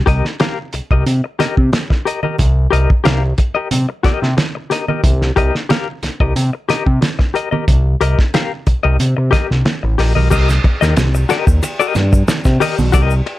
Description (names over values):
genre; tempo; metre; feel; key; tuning
funk; 91 BPM; 4/4; straight; C minor; A4 = 438 Hz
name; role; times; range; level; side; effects
semi-hollow electric guitar; accompaniment; 0.1-13.3 s; G4 to F5; -18 LUFS; left 7 dB; tremolo
fat analog bass; bass; 0.1-13.2 s; A1 to C3; -14 LUFS; equal; none
cloth-damped thuddy drum kit; drums; 0.1-13.4 s; crash cymbal, hi-hat, kick drum, ride cymbal, snare drum; -16 LUFS; equal; none
congas; percussion; 0.4-13.1 s; none; -24 LUFS; right 5 dB; none
egg shaker; percussion; 10.3-13.2 s; none; -33 LUFS; left 2 dB; none
room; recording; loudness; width
little or no reverb; none; -13 LUFS; side -16 dB against mid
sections
0.0-10.3 A section; 10.3-13.4 B section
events
none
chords
0.0 Cm7